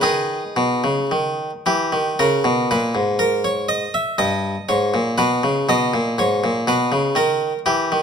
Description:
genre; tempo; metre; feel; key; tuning
classical, baroque-style suite movement for harpsichord; 55-61 BPM; 3/4; rubato; G# minor; A4 = 437 Hz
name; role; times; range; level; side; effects
harpsichord; solo; 0.0-8.0 s; G2 to E5; -17 LUFS; equal; none
room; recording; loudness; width
moderate large studio reverb, RT60 1.5 s; none; -17 LUFS; side -7 dB against mid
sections
0.0-2.2 A section; 2.2-8.0 B section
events
none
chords
0.0 G#m; 1.1 D#; 2.2 G#madd9; 4.2 D#/G; 5.2 G#m (rootless); 7.2 D#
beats
0.03 1.10 | 2.17 3.18 4.18 | 5.17 6.16 7.15

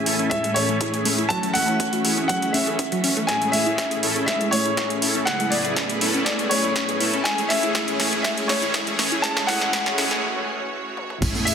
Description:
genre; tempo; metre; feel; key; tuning
progressive house; 121 BPM; 4/4; straight; A major; A4 = 440 Hz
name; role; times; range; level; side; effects
warm baby grand piano; melody; 0.0-11.5 s; C#5 to A5; -25 LUFS; equal; sidechain pumping, tape echo
rich studio string section; sustained chords; 0.0-11.5 s; C#3 to G#5; -30 LUFS; right 2 dB; sidechain pumping, low-pass filter
soft supersaw; stabs; 0.0-11.5 s; A2 to A4; -26 LUFS; left 1 dB; analog chorus, sidechain pumping, low-pass filter, tape echo
wide unison pluck; arpeggios; 0.1-11.5 s; F#3 to A4; -29 LUFS; equal; sidechain pumping, tape echo
deep house drum kit; drums; 0.1-11.5 s; crash cymbal, hi-hat, snare drum, tambourine, toms; -24 LUFS; equal; overdrive, high-pass filter on hats, high-pass filter on snare, high-pass filter on toms, high-pass filter on cymbals, high-pass filter on perc, high-pass filter on room
electronic kick drum; drums; 0.3-11.3 s; none; -30 LUFS; equal; high-pass filter on kick
tight sequencer bass; bass; 11.2-11.3 s; A1; -26 LUFS; equal; sidechain pumping
sub drop; sound effects; 11.2-11.5 s; none; -32 LUFS; equal; none
congas; percussion; 11.3-11.4 s; none; -33 LUFS; left 1 dB; overdrive, sidechain pumping on perc
soft synth bell; second line; 11.5 s; E5; -28 LUFS; left 1 dB; chorus, sidechain pumping
room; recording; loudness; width
wet lush hall reverb, RT60 2.3 s; dense, heavily limited modern master, high-pass filter; -19 LUFS; side -7 dB against mid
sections
0.0-11.2 A section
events
build-up 0.0-11.2; filter sweep on synth pluck 0.0-11.2; filter sweep on supersaw synth 0.0-11.2; filter sweep on string section 0.0-11.2; drum fill 3.3-10.2, 11.0; break 10.2-11.2; impact 11.2-11.5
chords
0.0 Amaj7; 1.3 F#m7; 3.3 Amaj7; 5.3 Bm9; 7.3 Amaj7; 9.2 F#m7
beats
0.31 0.81 | 1.30 1.80 2.29 2.79 | 3.29 3.78 4.28 4.77 | 5.27 5.76 6.26 6.76 | 7.25 7.75 8.24 8.74 | 9.24 9.73 10.23 10.72 | 11.22

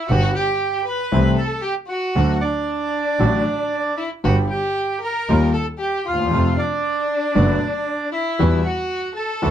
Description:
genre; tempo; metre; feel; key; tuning
tango; 116 BPM; 4/4; rubato; G major; A4 = 440 Hz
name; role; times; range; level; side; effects
bandoneon; melody; 0.0-9.5 s; D4 to B5; -23 LUFS; right 3 dB; none
warm violin; second line; 0.0-9.5 s; D4 to B4; -26 LUFS; left 4 dB; none
clear concert grand piano; accompaniment; 0.1-9.5 s; G1 to G4; -20 LUFS; left 2 dB; none
bandoneon; stabs; 0.1-9.5 s; G3 to G4; -30 LUFS; right 7 dB; none
warm double bass; bass; 0.1-9.5 s; F#1 to F2; -21 LUFS; right 1 dB; none
room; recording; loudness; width
moderate club reverb, RT60 0.6 s; dark, warm production; -18 LUFS; side -10 dB against mid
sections
0.0-9.5 A section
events
none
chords
0.1 G; 1.1 C6; 2.2 D; 4.3 G; 5.3 Ebadd9; 6.3 F; 7.4 D6/F#; 8.4 Emadd9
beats
| 0.10 0.61 1.13 1.65 | 2.16 2.68 3.20 3.73 | 4.25 4.77 5.29 5.81 | 6.33 6.85 7.36 7.88 | 8.39 8.91 9.43

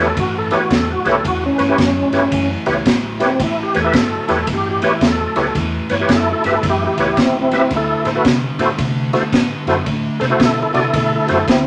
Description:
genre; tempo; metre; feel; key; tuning
electric blues shuffle; 111 BPM; 4/4; swing 64% on 8ths; A mixolydian; A4 = 439 Hz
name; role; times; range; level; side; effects
tonewheel organ; accompaniment; 0.0-11.7 s; C4 to E5; -19 LUFS; equal; slow rotary speaker, overdrive, chorus vibrato
crunchy overdriven guitar; riff; 0.0-11.7 s; A2 to B3; -25 LUFS; equal; none
hollow-body short-scale fingered electric bass; bass; 0.0-11.7 s; A1 to C3; -27 LUFS; equal; none
crunchy breakbeat drum kit; drums; 0.2-11.6 s; kick drum, ride cymbal, snare drum; -22 LUFS; equal; none
room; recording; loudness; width
moderate studio reverb, RT60 0.7 s; none; -16 LUFS; mono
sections
0.0-11.7 A section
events
none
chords
0.0 A7; 7.7 D7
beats
0.17 0.71 | 1.25 1.79 2.33 2.87 | 3.41 3.94 4.48 5.02 | 5.56 6.10 6.64 7.17 | 7.71 8.25 8.79 9.33 | 9.87 10.41 10.95 11.48

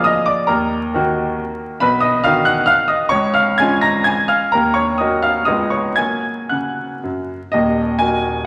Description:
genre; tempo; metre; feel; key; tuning
classical, romantic triple-time dance for piano with dotted rhythms; 107-147 BPM; 3/4; rubato; F# major; A4 = 439 Hz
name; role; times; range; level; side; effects
clear baby grand piano; solo; 0.0-8.5 s; Eb1 to A#6; -17 LUFS; equal; none
room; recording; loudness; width
wet recital hall reverb, RT60 1.7 s; vinyl crackle; -17 LUFS; mono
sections
0.0-7.5 A section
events
none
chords
0.0 A#7/D; 0.5 D#m; 1.8 B; 3.1 C#; 4.5 D#m; 5.5 C#7; 6.0 F#; 7.5 Ebm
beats
0.09 | 0.50 0.94 1.40 | 1.83 2.26 2.70 | 3.14 3.62 4.10 | 4.54 5.00 5.48 | 5.98 6.51 7.05 | 7.54 8.01

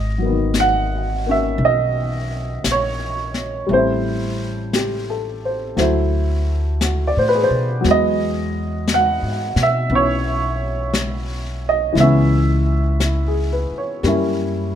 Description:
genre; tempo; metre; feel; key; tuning
jazz ballad; 58 BPM; 4/4; swing 68% on 8ths; G# minor; A4 = 440 Hz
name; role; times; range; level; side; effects
warm upright piano; accompaniment; 0.0-14.8 s; D#3 to F#5; -19 LUFS; equal; none
upright bass; bass; 0.0-14.8 s; G#1 to B2; -21 LUFS; equal; none
jazz brush drum kit; drums; 0.5-14.8 s; brushed snare drum, hi-hat, snare drum; -26 LUFS; left 3 dB; none
room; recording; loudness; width
light reverb; close, detailed microphones; -17 LUFS; side -9 dB against mid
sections
0.0-14.8 A section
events
none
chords
0.0 G#m9; 3.7 Am7; 5.8 D9; 7.8 Emaj7; 12.0 C#m7; 14.0 F#7b9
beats
0.55 1.59 2.64 | 3.69 4.72 5.77 6.80 | 7.84 8.87 9.90 10.93 | 11.97 13.00 14.04

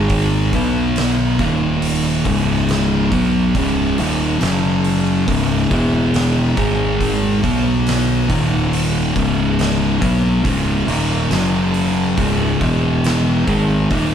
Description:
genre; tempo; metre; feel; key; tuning
stoner and doom metal; 70 BPM; 4/4; straight; C# minor; A4 = 436 Hz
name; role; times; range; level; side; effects
thick fuzz guitar; riff; 0.0-14.1 s; C#2 to B3; -16 LUFS; equal; distortion
growling fingered electric bass; bass; 0.0-14.1 s; C#1 to B1; -24 LUFS; equal; overdrive
oversized low-tuned drum kit; drums; 0.1-14.1 s; hi-hat, kick drum, snare drum; -23 LUFS; equal; none
room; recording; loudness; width
light reverb; band playing live in one room; -14 LUFS; side -8 dB against mid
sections
0.0-14.1 A section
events
none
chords
0.0 G#5; 0.5 B5; 1.4 D#5; 2.3 C#5; 4.4 F#5; 5.3 C#5; 5.7 E5; 6.6 G#5; 7.4 B5; 8.3 D#5; 9.2 C#5; 11.3 F#5; 12.2 C#5; 12.6 E5; 13.5 N.C.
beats
| 0.11 0.97 1.83 2.69 | 3.55 4.41 5.28 6.14 | 7.00 7.86 8.73 9.59 | 10.45 11.32 12.18 13.05 | 13.91

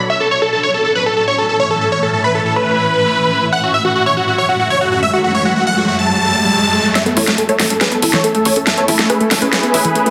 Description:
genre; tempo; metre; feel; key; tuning
uplifting trance; 140 BPM; 4/4; straight; A major; A4 = 439 Hz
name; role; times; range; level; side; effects
shimmering ambient pad; sustained chords; 0.0-10.1 s; F#2 to E5; -22 LUFS; equal; chorus, built-in reverb, phaser
big supersaw lead; melody; 0.1-10.1 s; F#4 to A5; -17 LUFS; equal; phaser, low-pass filter, dub echo
riser; sound effects; 4.7-7.0 s; none; -24 LUFS; equal; none
unison pluck; second line; 7.0-10.1 s; A4 to E5; -25 LUFS; equal; none
unison pluck; arpeggios; 7.0-10.1 s; E3 to E4; -22 LUFS; equal; lush chorus, tape echo
big-room dance drum kit; drums; 7.0-10.1 s; hi-hat, snare drum; -18 LUFS; equal; overdrive, high-pass filter on snare, high-pass filter on hats
tight sequencer bass; bass; 7.2-9.9 s; A1; -28 LUFS; equal; high-pass filter
room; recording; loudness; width
light reverb; dense, heavily limited modern master; -14 LUFS; mono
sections
0.0-7.0 A section; 7.0-10.1 B section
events
riser 4.7-7.0; build-up 7.0-10.1; drum fill 7.0-10.1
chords
0.1 A; 3.5 F#m7; 7.0 A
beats
| 0.10 0.53 0.95 1.38 | 1.81 2.24 2.67 3.10 | 3.52 3.95 4.38 4.81 | 5.24 5.67 6.10 6.53 | 6.95 7.38 7.81 8.24 | 8.67 9.10 9.53 9.95

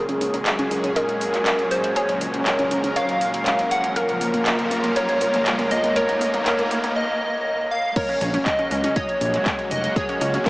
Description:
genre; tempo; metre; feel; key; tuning
progressive house; 120 BPM; 4/4; straight; unclear; A4 = 440 Hz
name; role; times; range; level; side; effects
plucky unison lead; melody; 0.0-10.5 s; Ab4 to Gb5; -23 LUFS; equal; tape echo
soft synth bell; second line; 0.0-10.5 s; Ab4 to Gb5; -31 LUFS; equal; none
supersaw pad; sustained chords; 0.0-10.5 s; Bb2 to Bb4; -27 LUFS; equal; lush chorus, sidechain pumping
wide unison pluck; arpeggios; 0.0-10.4 s; Bb3 to Eb5; -27 LUFS; equal; sidechain pumping, tape echo
riser; sound effects; 2.9-7.0 s; none; -34 LUFS; equal; none
pop drum kit; drums; 0.1-10.5 s; crash cymbal, handclaps, hi-hat; -27 LUFS; equal; none
electronic kick drum; drums; 8.0-10.5 s; none; -26 LUFS; equal; none
fat analog bass; bass; 8.2-10.4 s; F1 to Db2; -25 LUFS; equal; sidechain pumping
room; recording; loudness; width
wet huge ambient reverb, RT60 7.5 s; dreamy mix soaked in reverb, high-pass filter, small speaker sound; -19 LUFS; side -22 dB against mid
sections
0.0-8.0 A section; 8.0-10.5 B section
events
build-up 0.0-8.0; filter sweep on synth pluck 0.0-8.0; filter sweep on digital synth lead 0.0-8.0; riser 2.9-7.0; break 7.0-8.0; drop 8.0-10.5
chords
0.0 Gbadd9/Bb; 4.0 Bbm; 8.0 Gbadd9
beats
0.46 0.96 1.46 | 1.96 2.46 2.96 3.46 | 3.96 4.46 4.96 5.46 | 5.96 6.46 6.96 7.46 | 7.96 8.46 8.96 9.46 | 9.96 10.46

